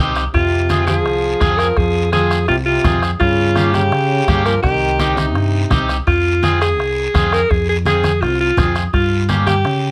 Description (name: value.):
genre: latin, cumbia.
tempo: 168 BPM.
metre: 4/4.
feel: straight.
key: F minor.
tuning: A4 = 440 Hz.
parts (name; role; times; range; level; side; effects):
electric guitar at the edge of break-up; accompaniment; 0.0-9.5 s; Bb3 to Ab4; -22 LUFS; equal; none.
fingered electric bass; bass; 0.0-9.9 s; C2 to Db3; -22 LUFS; equal; none.
bombo; percussion; 0.2-9.8 s; none; -23 LUFS; equal; none.
guiro; percussion; 0.2-9.9 s; none; -33 LUFS; equal; none.
breathy alto saxophone; melody; 0.3-9.9 s; Eb4 to Bb4; -20 LUFS; equal; none.
bright trombone; second line; 0.3-5.9 s; C3 to F3; -26 LUFS; equal; none.
congas; percussion; 0.7-9.6 s; none; -26 LUFS; equal; none.
room: light reverb.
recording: none.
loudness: -16 LUFS.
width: mono.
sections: 0.0-6.1 A section; 6.1-9.9 A section.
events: none.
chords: 0.3 Fm; 3.2 Gdim; 4.6 Cm; 6.1 Fm; 8.9 Gdim.